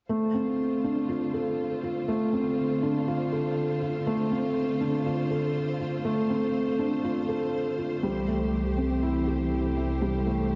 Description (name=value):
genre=electronica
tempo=121 BPM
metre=4/4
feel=straight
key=unclear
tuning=A4 = 440 Hz
part: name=warm symphonic string section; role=sustained chords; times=0.1-10.6 s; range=C2 to C5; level=-33 LUFS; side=equal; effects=none
part: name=felt-muted upright piano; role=riff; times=0.1-10.6 s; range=G3 to A4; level=-29 LUFS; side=equal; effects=digital delay
room=wet concert hall reverb, RT60 2.0 s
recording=dark, warm production, nothing above 7.7 kHz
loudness=-28 LUFS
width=mono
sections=0.1-10.6 A section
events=none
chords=0.1 Dm7; 8.0 Am7/C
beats=| 0.10 0.59 1.09 1.59 | 2.08 2.58 3.08 3.57 | 4.07 4.56 5.06 5.55 | 6.05 6.55 7.04 7.54 | 8.03 8.53 9.03 9.52 | 10.02 10.51